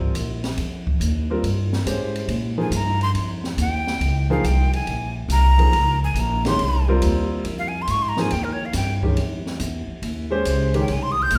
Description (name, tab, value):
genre	modal jazz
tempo	140 BPM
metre	4/4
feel	swing 68% on 8ths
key	unclear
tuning	A4 = 440 Hz
part	clear concert grand piano	accompaniment	0.0-10.9 s	Eb3 to C5	-28 LUFS	equal	none
part	upright bass	bass	0.0-11.4 s	Ab1 to Bb2	-24 LUFS	equal	none
part	open jazz drum kit	drums	0.0-11.4 s	hi-hat, kick drum, ride cymbal, snare drum	-32 LUFS	equal	none
part	breathy bright jazz flute	melody	2.6-11.4 s	Bb4 to G6	-26 LUFS	equal	none
room	wet recital hall reverb, RT60 1.4 s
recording	recorded in a church or concert hall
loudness	-22 LUFS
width	mono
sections	0.0-11.4 A section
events	flute solo 0.0-11.4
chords	0.0 Fm11; 2.3 Bbm11; 9.2 Fm9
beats	0.15 | 0.58 1.01 1.44 1.87 | 2.30 2.73 3.16 3.59 | 4.02 4.45 4.88 5.31 | 5.74 6.17 6.60 7.03 | 7.46 7.89 8.32 8.74 | 9.18 9.60 10.03 10.46 | 10.89 11.32